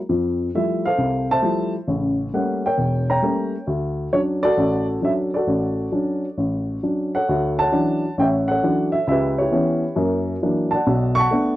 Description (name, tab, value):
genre	solo jazz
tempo	134 BPM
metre	4/4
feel	swing 67% on 8ths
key	D major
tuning	A4 = 442 Hz
part	dark upright piano	solo	0.1-11.6 s	E1 to C#6	-18 LUFS	equal	none
room	light reverb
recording	dry, close 1970s-style studio recording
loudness	-18 LUFS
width	side -15 dB against mid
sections	0.0-7.3 A section; 7.3-11.6 B section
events	none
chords	0.1 Fmaj9; 1.9 A7b9; 3.7 Dmaj7; 7.3 Dmaj9; 9.1 C#m7b5; 10.0 F#7b13; 10.9 Bm7